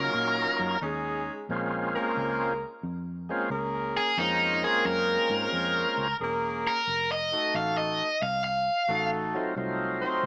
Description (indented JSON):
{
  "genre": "electric blues shuffle",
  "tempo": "89 BPM",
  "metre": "4/4",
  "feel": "swing 67% on 8ths",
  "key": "Bb minor",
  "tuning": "A4 = 439 Hz",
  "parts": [
    { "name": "overdriven electric guitar", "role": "melody", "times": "0.0-9.1 s", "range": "Eb4 to F5", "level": "-28 LUFS", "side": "equal", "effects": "none" },
    { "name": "tonewheel organ", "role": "accompaniment", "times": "0.0-10.3 s", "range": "Gb3 to F4", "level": "-33 LUFS", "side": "equal", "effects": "slow rotary speaker, overdrive" },
    { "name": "vintage muted fingered electric bass", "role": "bass", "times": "0.0-10.3 s", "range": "E1 to Bb2", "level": "-39 LUFS", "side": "equal", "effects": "none" },
    { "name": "mellow horn section", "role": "stabs", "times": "0.8-10.3 s", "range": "Ab3 to C5", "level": "-34 LUFS", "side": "equal", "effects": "none" }
  ],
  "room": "light reverb, digital ambience",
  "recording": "small speaker sound",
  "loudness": "-28 LUFS",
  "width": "mono",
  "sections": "0.0-10.3 A section",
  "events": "overdriven electric guitar solo 0.0-10.3",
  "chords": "0.0 Ebm7; 1.5 Bbm7; 6.9 F7b9"
}